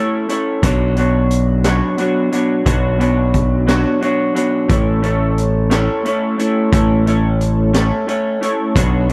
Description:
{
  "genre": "indie rock",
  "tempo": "59 BPM (dotted quarters)",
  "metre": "6/8",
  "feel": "straight",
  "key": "A major",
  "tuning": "A4 = 440 Hz",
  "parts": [
    { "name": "electric guitar through a small old amp", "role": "riff", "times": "0.0-9.1 s", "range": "B2 to C#5", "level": "-18 LUFS", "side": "equal", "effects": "double-tracked" },
    { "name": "raw garage drum kit", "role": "drums", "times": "0.3-9.1 s", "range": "hi-hat, kick drum, snare drum", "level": "-22 LUFS", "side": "equal", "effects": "none" },
    { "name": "modern bright picked electric bass", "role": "bass", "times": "0.6-9.1 s", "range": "A1 to B1", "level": "-18 LUFS", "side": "equal", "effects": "none" }
  ],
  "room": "small room ambience",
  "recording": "dry, close 1970s-style studio recording",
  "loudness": "-16 LUFS",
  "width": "mono",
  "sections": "0.0-9.1 A section",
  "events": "none",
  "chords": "0.0 A; 0.6 Bmadd9; 4.7 A",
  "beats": "| 0.63 1.64 | 2.66 3.68 | 4.69 5.71 | 6.73 7.74 | 8.76"
}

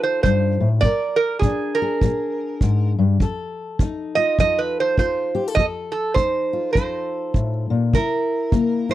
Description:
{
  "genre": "acoustic country blues, solo or duo",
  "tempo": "101 BPM",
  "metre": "4/4",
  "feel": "swing 61% on 8ths",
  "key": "F mixolydian",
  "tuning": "A4 = 439 Hz",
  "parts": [
    { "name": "metal-body resonator slide guitar", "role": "melody", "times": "0.0-8.9 s", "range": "Ab4 to Eb5", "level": "-21 LUFS", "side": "right 4 dB", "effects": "none" },
    { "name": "fingerpicked steel-string acoustic guitar", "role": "accompaniment", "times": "0.0-8.9 s", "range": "F2 to Bb4", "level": "-22 LUFS", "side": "left 3 dB", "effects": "none" },
    { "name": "kick drum", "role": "drums", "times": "0.2-8.7 s", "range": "none", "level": "-19 LUFS", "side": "right 1 dB", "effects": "none" }
  ],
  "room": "little or no reverb",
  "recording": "dry, close 1970s-style studio recording",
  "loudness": "-18 LUFS",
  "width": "side -14 dB against mid",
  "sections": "0.0-8.9 A section",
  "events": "none",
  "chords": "0.0 F7; 0.8 Bb7; 3.2 F7; 7.9 C7",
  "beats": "0.24 | 0.83 1.43 2.02 2.61 | 3.20 3.80 4.39 4.98 | 5.57 6.16 6.75 7.34 | 7.93 8.52"
}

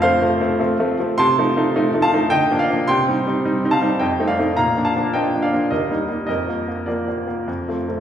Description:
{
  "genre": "classical-period piano sonatina",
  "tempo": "105 BPM",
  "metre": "3/4",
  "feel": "uneven beats, rubato",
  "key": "Bb major",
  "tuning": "A4 = 440 Hz",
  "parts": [
    { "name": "clear baby grand piano", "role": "solo", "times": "0.0-8.0 s", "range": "Eb2 to C6", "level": "-17 LUFS", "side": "equal", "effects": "none" }
  ],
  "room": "wet recital hall reverb, RT60 1.6 s",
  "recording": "recorded in a church or concert hall",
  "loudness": "-17 LUFS",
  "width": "side -9 dB against mid",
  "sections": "0.0-8.0 A section",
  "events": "none",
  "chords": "0.0 F; 1.2 F7/C; 2.3 Bb/D; 2.9 Cm; 4.0 F7; 4.6 Bb; 5.7 Eb; 6.3 Bb/F; 7.5 F",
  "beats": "0.03 0.59 | 1.17 1.74 2.31 | 2.88 3.45 4.01 | 4.57 5.14 5.71 | 6.29 6.89 7.48"
}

